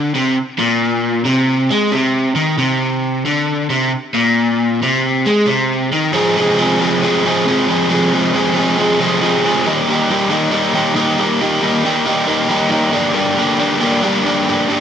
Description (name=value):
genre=rock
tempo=136 BPM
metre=4/4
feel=straight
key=unclear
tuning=A4 = 440 Hz
part: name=overdriven electric guitar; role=solo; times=0.0-14.8 s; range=F2 to Ab4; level=-13 LUFS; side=equal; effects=none
room=moderate lush hall reverb, RT60 2.3 s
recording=rough home demo mix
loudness=-13 LUFS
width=side -8 dB against mid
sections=0.0-6.1 A section; 6.1-14.8 B section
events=none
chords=0.0 N.C.; 6.1 Fm; 9.7 Eb; 12.9 Gm